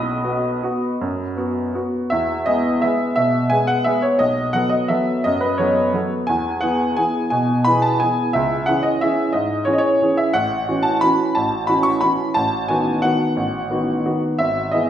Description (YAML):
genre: classical, piano waltz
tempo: 152-189 BPM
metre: 3/4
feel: rubato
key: E major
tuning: A4 = 440 Hz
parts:
  - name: clear upright piano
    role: solo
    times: 0.0-14.9 s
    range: G#1 to D#6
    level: -17 LUFS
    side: equal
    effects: none
room: wet recital hall reverb, RT60 1.4 s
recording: heard from further back in the room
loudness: -17 LUFS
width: side -10 dB against mid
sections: 0.0-2.1 A section; 2.1-14.9 B section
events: none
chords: 0.0 B; 2.1 E; 4.2 B9; 6.3 E; 8.3 C#m; 10.3 F#m7/A; 12.4 B7/A; 14.4 E/G#